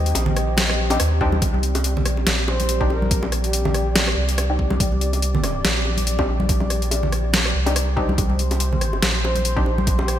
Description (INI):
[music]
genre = deep dubstep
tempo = 142 BPM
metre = 4/4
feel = swing 56% on 16ths, half-time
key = C minor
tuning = A4 = 439 Hz
[part]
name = dark analog pad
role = sustained chords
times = 0.0-10.2 s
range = C4 to Eb5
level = -28 LUFS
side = left 1 dB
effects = chorus
[part]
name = soft dub sub bass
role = bass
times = 0.0-10.2 s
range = Bb1 to Eb2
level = -22 LUFS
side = equal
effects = none
[part]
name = dubstep drum kit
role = drums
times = 0.1-10.2 s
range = hi-hat, rim click, snare drum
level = -23 LUFS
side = equal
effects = overdrive, small room ambience
[part]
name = bongos and congas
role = percussion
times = 0.1-10.1 s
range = none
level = -27 LUFS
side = right 1 dB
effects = dub echo
[part]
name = filtered dub chord stab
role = stabs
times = 0.9-9.7 s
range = C4 to G4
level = -28 LUFS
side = left 2 dB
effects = chorus, dub echo
[part]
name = electronic kick drum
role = drums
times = 1.2-10.0 s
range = none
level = -22 LUFS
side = equal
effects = overdrive, small room ambience
[part]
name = breathy flute-like synth lead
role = melody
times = 2.5-4.0, 9.2-10.2 s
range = G4 to C5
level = -29 LUFS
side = left 1 dB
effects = chorus, dub echo
[sound]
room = light reverb, digital ambience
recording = bright 1980s-style digital production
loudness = -18 LUFS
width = side -11 dB against mid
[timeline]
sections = 0.0-10.2 A section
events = none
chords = 0.0 Cmadd9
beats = 0.15 0.57 1.00 | 1.42 1.84 2.27 2.69 | 3.11 3.53 3.96 4.38 | 4.80 5.22 5.65 6.07 | 6.49 6.91 7.34 7.76 | 8.18 8.60 9.03 9.45 | 9.87